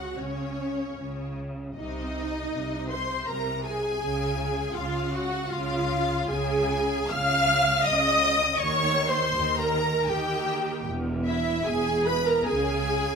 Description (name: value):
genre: classical, slow romantic movement for string orchestra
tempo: 79 BPM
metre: 3/4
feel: uneven beats, rubato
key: Db major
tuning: A4 = 440 Hz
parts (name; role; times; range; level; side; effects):
- rich studio violin section; melody; 0.0-13.2 s; Db5 to F6; -33 LUFS; left 5 dB; none
- warm studio violin section; second line; 0.0-13.2 s; Db5 to F6; -32 LUFS; left 3 dB; none
- rich studio viola section; accompaniment; 0.0-13.2 s; Db4 to F5; -26 LUFS; right 1 dB; none
- clear studio cello section; bass; 0.0-13.2 s; E2 to Eb3; -32 LUFS; right 1 dB; none
- warm studio double bass section; bass; 0.0-13.2 s; E1 to Eb2; -34 LUFS; right 3 dB; none
room: moderate recital hall reverb, RT60 1.3 s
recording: minimal, uncompressed stereo recording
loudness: -24 LUFS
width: side -6 dB against mid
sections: 0.0-13.2 A section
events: none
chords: 0.0 N.C.; 1.8 Abadd9/C; 4.0 Db; 8.6 Eb; 10.9 E; 12.5 Db5